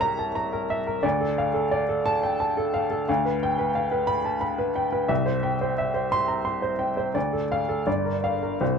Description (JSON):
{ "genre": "classical, romantic character piece for solo piano", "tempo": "88 BPM", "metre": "3/4", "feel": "rubato", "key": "unclear", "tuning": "A4 = 436 Hz", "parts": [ { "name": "clear upright piano", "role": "solo", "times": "0.0-8.8 s", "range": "G1 to C6", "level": "-23 LUFS", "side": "equal", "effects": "none" } ], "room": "light reverb", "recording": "dark, warm production", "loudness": "-23 LUFS", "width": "side -6 dB against mid", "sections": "0.0-8.8 A section", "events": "none", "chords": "0.0 C7b9; 1.0 Dm; 3.1 G7/D; 5.1 C; 7.2 Dm; 7.9 Gm7" }